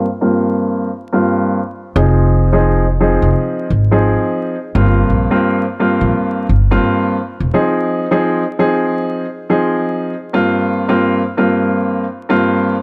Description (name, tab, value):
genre	hip hop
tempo	86 BPM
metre	4/4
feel	swing 62% on 16ths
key	F minor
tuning	A4 = 440 Hz
part	warm upright piano	accompaniment	0.0-12.7 s	G2 to Ab4	-17 LUFS	equal	high-pass filter, low-pass filter
part	upright bass	bass	2.0-7.5 s	E1 to Bb1	-16 LUFS	equal	none
room	light reverb, small room ambience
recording	vinyl crackle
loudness	-15 LUFS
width	mono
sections	0.0-7.5 A section; 7.5-12.8 B section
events	filter sweep on upright piano 0.0-7.5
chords	0.0 C7sus4/G; 2.0 Fm7; 4.8 C7sus4/G; 7.5 Fm7; 10.3 C7sus4/G